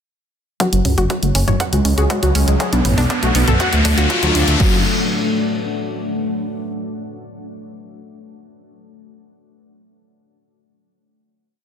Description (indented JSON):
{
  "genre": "melodic techno",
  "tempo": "120 BPM",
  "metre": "4/4",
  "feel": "straight",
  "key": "F# harmonic minor",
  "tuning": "A4 = 440 Hz",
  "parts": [
    { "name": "wide unison lead", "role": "melody", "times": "0.6-4.8 s", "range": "F#3 to G#4", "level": "-23 LUFS", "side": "right 1 dB", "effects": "sidechain pumping, ping-pong delay" },
    { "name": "deep dark ambient pad", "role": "sustained chords", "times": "1.3-4.8 s", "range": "F#3 to D5", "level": "-24 LUFS", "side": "left 2 dB", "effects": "chorus, built-in reverb, sidechain pumping" },
    { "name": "analog pluck", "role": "arpeggios", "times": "0.6-4.8 s", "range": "F#3 to F#5", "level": "-23 LUFS", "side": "left 2 dB", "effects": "chorus, sidechain pumping, ping-pong delay" },
    { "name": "electronic kick drum", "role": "drums", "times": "0.6-4.7 s", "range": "none", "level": "-20 LUFS", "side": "equal", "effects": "high-pass filter on kick, studio reverb" },
    { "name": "punchy analog drum machine", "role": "drums", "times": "0.6-4.7 s", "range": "crash cymbal, hi-hat, toms", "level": "-23 LUFS", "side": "right 1 dB", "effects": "studio reverb" },
    { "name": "riser", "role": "sound effects", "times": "1.7-4.6 s", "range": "none", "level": "-22 LUFS", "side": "left 1 dB", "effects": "none" },
    { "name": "dark detuned saw bass", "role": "bass", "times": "0.7-4.8 s", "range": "F#1 to D2", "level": "-17 LUFS", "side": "equal", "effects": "sidechain pumping" }
  ],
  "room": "light reverb, digital ambience",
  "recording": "dense, heavily limited modern master",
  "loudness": "-15 LUFS",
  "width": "side -8 dB against mid",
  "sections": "0.6-4.6 build; 4.6-6.6 final chord",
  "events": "build-up 0.6-4.6; filter sweep on synth pluck 0.6-4.6; riser 1.7-4.6",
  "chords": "0.6 F#m; 1.6 C#sus4; 2.6 Bm7; 3.6 D; 4.6 F#m"
}